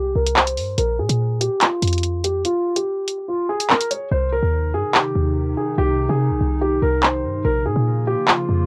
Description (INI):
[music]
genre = hip hop, drill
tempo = 144 BPM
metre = 4/4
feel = half-time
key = C phrygian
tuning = A4 = 439 Hz
[part]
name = dark concert grand piano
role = melody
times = 0.0-8.7 s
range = F4 to Db5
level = -25 LUFS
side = equal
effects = low-pass filter, cassette tape, analog delay
[part]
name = short 808-style bass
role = bass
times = 0.0-8.7 s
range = Bb1 to C3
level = -23 LUFS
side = equal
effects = none
[part]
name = drill drum kit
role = drums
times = 0.3-8.4 s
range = handclaps, hi-hat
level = -20 LUFS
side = equal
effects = none
[part]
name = warbly tape-like pad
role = sustained chords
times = 4.4-8.7 s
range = C3 to F4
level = -28 LUFS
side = equal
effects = chorus, built-in reverb
[sound]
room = light reverb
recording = home recording on cassette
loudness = -20 LUFS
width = mono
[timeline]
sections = 0.0-8.7 A section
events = filter sweep on grand piano 0.0-4.1; kick muted 2.4-4.1; hi-hats muted 4.1-8.7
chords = 0.0 C5; 0.8 Bb5; 4.1 Cm; 7.4 Bbm